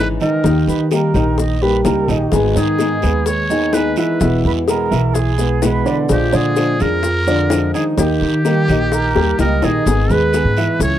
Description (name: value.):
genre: latin, Cuban son and guajira.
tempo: 127 BPM.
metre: 4/4.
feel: straight.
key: unclear.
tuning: A4 = 440 Hz.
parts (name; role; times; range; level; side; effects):
trumpet with metal mute; melody; 0.0-11.0 s; G4 to C#5; -22 LUFS; equal; none.
flamenco guitar; accompaniment; 0.0-10.8 s; B2 to G#4; -21 LUFS; left 6 dB; none.
dark concert grand piano; arpeggios; 0.0-11.0 s; D3 to E5; -18 LUFS; right 3 dB; none.
upright bass; bass; 0.0-11.0 s; E1 to D#3; -18 LUFS; equal; none.
guiro; percussion; 0.2-11.0 s; none; -33 LUFS; right 10 dB; none.
maracas; percussion; 0.2-11.0 s; none; -32 LUFS; left 13 dB; none.
bongos; percussion; 0.4-11.0 s; none; -22 LUFS; left 6 dB; none.
jazz flute; second line; 0.7-9.8 s; G4 to D#5; -24 LUFS; right 7 dB; none.
room: light reverb.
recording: dry, close 1970s-style studio recording.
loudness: -13 LUFS.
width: side -11 dB against mid.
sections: 0.0-9.9 A section; 9.9-11.0 B section.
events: drum fill 9.2-9.9.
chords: 0.4 D#; 2.3 G#m; 4.2 E; 6.1 A#7; 8.0 D#; 9.9 G#m.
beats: | 0.45 0.92 1.39 1.86 | 2.33 2.80 3.27 3.74 | 4.21 4.68 5.15 5.62 | 6.09 6.57 7.04 7.51 | 7.98 8.45 8.92 9.39 | 9.87 10.34 10.81.